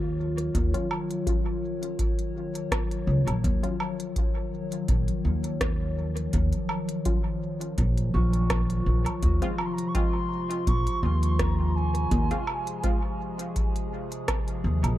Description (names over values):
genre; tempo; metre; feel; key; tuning
ambient dub; 83 BPM; 4/4; swing 54% on 16ths; Eb dorian; A4 = 440 Hz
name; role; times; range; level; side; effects
warbly tape-like pad; sustained chords; 0.0-15.0 s; C3 to Db5; -32 LUFS; left 2 dB; chorus, built-in reverb
vibraphone with medium mallets; arpeggios; 0.0-15.0 s; F4 to Db6; -37 LUFS; equal; dub echo
upright bass; bass; 0.0-15.0 s; Bb1 to Eb2; -25 LUFS; equal; none
organic electronic drum kit; drums; 0.4-15.0 s; hi-hat, rim click, woodblock; -33 LUFS; right 1 dB; overdrive, dub echo
electronic kick drum; drums; 0.5-14.4 s; none; -28 LUFS; equal; overdrive
filtered dub chord stab; stabs; 0.7-13.0 s; Gb3 to F4; -37 LUFS; equal; analog chorus, cassette tape, dub echo
mellow wooden flute; melody; 9.6-13.2 s; Ab5 to Db6; -34 LUFS; right 1 dB; dub echo
room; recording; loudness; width
light reverb; dark, warm production; -24 LUFS; side -14 dB against mid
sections
0.0-15.0 A section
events
none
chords
0.0 Ebm9; 9.2 Fm